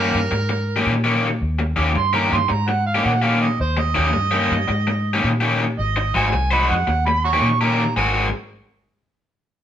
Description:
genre	blues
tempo	110 BPM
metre	4/4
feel	swing 68% on 8ths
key	Ab major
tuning	A4 = 440 Hz
part	overdriven harmonica	second line	0.0-8.3 s	Bb4 to Db6	-22 LUFS	right 4 dB	none
part	cranked stack guitar	riff	0.0-8.3 s	Eb3 to C5	-20 LUFS	left 2 dB	overdrive
part	vintage muted fingered electric bass	bass	0.0-8.3 s	Ab1 to Bb2	-22 LUFS	equal	none
room	moderate studio reverb, RT60 0.8 s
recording	band playing live in one room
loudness	-17 LUFS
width	side -10 dB against mid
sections	0.0-8.0 A section; 8.0-9.6 B section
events	harmonica solo 0.0-8.0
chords	0.0 Eb7; 5.8 Ab7; 6.9 Eb7; 8.0 Ab9

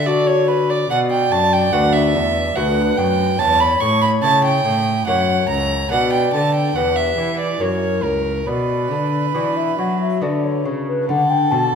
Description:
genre	classical, baroque-style sonata movement with continuo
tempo	71 BPM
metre	3/4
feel	straight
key	B minor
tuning	A4 = 439 Hz
part	baroque flute	melody	0.0-11.7 s	F#4 to A5	-22 LUFS	left 4 dB	none
part	warm violin	second line	0.0-11.8 s	A4 to C#6	-19 LUFS	right 3 dB	none
part	lute	accompaniment	0.0-11.8 s	D2 to C#5	-25 LUFS	left 4 dB	none
part	rich cello	bass	0.0-11.8 s	C#2 to F#3	-21 LUFS	right 1 dB	none
room	wet recital hall reverb, RT60 1.4 s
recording	recorded in a church or concert hall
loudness	-15 LUFS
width	side -6 dB against mid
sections	0.0-11.1 A section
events	none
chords	0.0 D; 0.9 Bm; 2.6 Bm/D; 3.4 A7/E; 5.1 F#7; 5.9 Bm; 6.8 Em; 7.6 F#7; 8.5 Bm; 11.1 D

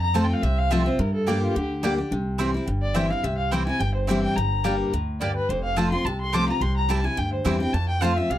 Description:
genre	bluegrass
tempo	213 BPM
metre	4/4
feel	swing 54% on 8ths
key	unclear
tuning	A4 = 440 Hz
part	dark fiddle	melody	0.0-8.4 s	F4 to D6	-27 LUFS	left 1 dB	none
part	picked steel-string acoustic guitar	accompaniment	0.0-8.4 s	F2 to G4	-25 LUFS	left 2 dB	none
part	upright bass	bass	0.0-8.4 s	F1 to G2	-26 LUFS	equal	none
part	mandolin	stabs	0.1-8.1 s	Bb3 to A5	-29 LUFS	right 6 dB	none
room	little or no reverb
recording	dry, close 1970s-style studio recording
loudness	-21 LUFS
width	side -12 dB against mid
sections	0.0-2.1 A section; 2.1-8.4 A section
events	fiddle solo 0.0-8.4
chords	0.0 F; 1.0 Gm; 2.1 C; 4.4 Gm; 5.5 F; 6.6 C; 7.7 F

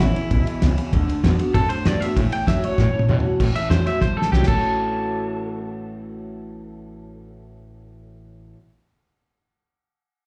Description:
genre	rockabilly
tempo	194 BPM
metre	4/4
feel	straight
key	A major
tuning	A4 = 440 Hz
part	electric guitar through a small old amp	melody	0.0-8.5 s	E4 to G5	-28 LUFS	equal	slapback echo, tape echo
part	picked acoustic archtop guitar	accompaniment	0.0-8.6 s	E2 to F#4	-32 LUFS	equal	none
part	electric guitar through a small old amp	riff	0.0-8.6 s	E2 to C#5	-31 LUFS	equal	spring reverb
part	upright bass	bass	0.0-8.5 s	A1 to B2	-25 LUFS	equal	none
part	cloth-damped thuddy drum kit	drums	0.0-4.6 s	crash cymbal, kick drum, ride cymbal, snare drum, toms	-25 LUFS	equal	none
room	light reverb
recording	live gig heard through the venue's PA, club ambience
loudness	-20 LUFS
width	mono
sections	0.0-3.4 A section; 3.4-4.6 B section; 4.6-7.1 C section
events	drum fill 2.8-3.4, 4.0-4.6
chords	0.0 E6; 0.9 D6; 2.2 A6

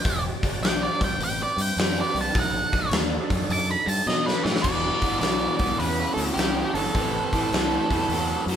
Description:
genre	blues rock power trio and southern rock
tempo	105 BPM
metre	4/4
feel	swing 66% on 8ths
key	E minor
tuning	A4 = 435 Hz
part	octave-fuzz lead guitar	melody	0.0-8.4 s	G4 to D6	-27 LUFS	right 2 dB	distortion
part	overdriven tonewheel organ	sustained chords	0.0-8.6 s	A3 to D5	-34 LUFS	right 3 dB	chorus vibrato, slow rotary speaker
part	big rock drum kit	drums	0.0-8.6 s	crash cymbal, hi-hat, kick drum, snare drum	-25 LUFS	left 1 dB	none
part	growling fingered electric bass	bass	0.1-8.6 s	E1 to B2	-30 LUFS	equal	overdrive
part	raw garage guitar	riff	4.6-8.6 s	E2 to F#3	-27 LUFS	equal	overdrive
room	light reverb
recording	band playing live in one room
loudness	-21 LUFS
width	side -9 dB against mid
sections	0.0-4.6 A section; 4.6-8.6 B section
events	lead electric guitar solo 0.0-4.6; drum fill 4.1-4.6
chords	0.1 Em7; 1.2 Am7; 2.4 B7#9; 4.6 Em7; 6.9 Am7

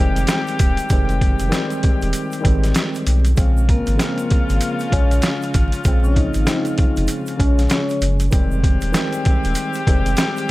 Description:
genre	hip hop, boom-bap hip-hop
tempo	97 BPM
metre	4/4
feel	swing 62% on 16ths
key	Bb minor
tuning	A4 = 445 Hz
part	tine electric piano	accompaniment	0.0-10.5 s	Db3 to Db4	-24 LUFS	equal	overdrive, medium stereo tremolo
part	warm saxophone section	stabs	0.0-10.5 s	Db3 to G4	-27 LUFS	left 2 dB	analog delay
part	warm sub bass	bass	0.0-10.1 s	Eb1 to Cb2	-19 LUFS	equal	none
part	boom bap sampler-style drum kit	drums	0.2-10.5 s	hi-hat, kick drum, snare drum	-18 LUFS	equal	none
part	tube shaker	percussion	0.2-10.5 s	none	-39 LUFS	right 10 dB	none
part	vibraphone with soft mallets	melody	3.7-8.0 s	Bb3 to Eb5	-25 LUFS	left 2 dB	analog delay
room	small room ambience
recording	vinyl crackle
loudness	-16 LUFS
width	side -18 dB against mid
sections	0.0-10.5 A section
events	none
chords	0.0 Fm9; 3.4 Bbm9; 8.3 Fm9

